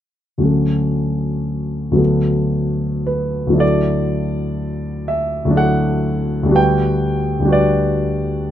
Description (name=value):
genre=classical, impressionist solo piano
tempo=51-65 BPM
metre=3/4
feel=rubato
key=D major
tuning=A4 = 440 Hz
part: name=clear concert grand piano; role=solo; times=0.4-8.5 s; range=D2 to G5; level=-15 LUFS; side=equal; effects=none
room=light reverb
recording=close, detailed microphones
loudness=-15 LUFS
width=side -11 dB against mid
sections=0.4-3.6 A section; 3.6-8.5 B section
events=none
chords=0.4 Dmaj7; 2.0 Bm7/D; 3.6 Dadd9; 6.6 Gmaj7/D